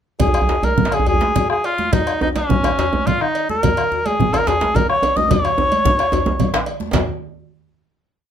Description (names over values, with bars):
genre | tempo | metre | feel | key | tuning
west african traditional, West African drum ensemble | 138-154 BPM (dotted quarters) | 12/8 | straight | Db major pentatonic | A4 = 441 Hz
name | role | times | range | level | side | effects
warm cor anglais | melody | 0.2-6.7 s | Db4 to Eb5 | -18 LUFS | left 1 dB | none
bombo | percussion | 0.2-7.1 s | none | -20 LUFS | left 3 dB | none
congas | percussion | 0.2-7.1 s | none | -24 LUFS | right 9 dB | none
cowbell | percussion | 0.2-7.1 s | none | -28 LUFS | right 1 dB | none
djembe | percussion | 0.2-7.1 s | none | -25 LUFS | left 6 dB | none
djembe | percussion | 0.3-7.1 s | none | -22 LUFS | right 2 dB | none
room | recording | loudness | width
moderate studio reverb, RT60 0.5 s | none | -15 LUFS | side -9 dB against mid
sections
0.2-6.9 A section; 6.9-8.3 final hit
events
speeding up 0.2-8.3; drum fill 5.3-6.9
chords
none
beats
| 0.20 0.63 1.06 1.50 | 1.93 2.36 2.79 3.21 | 3.64 4.06 4.48 4.89 | 5.31 5.72 6.12 6.53 | 6.93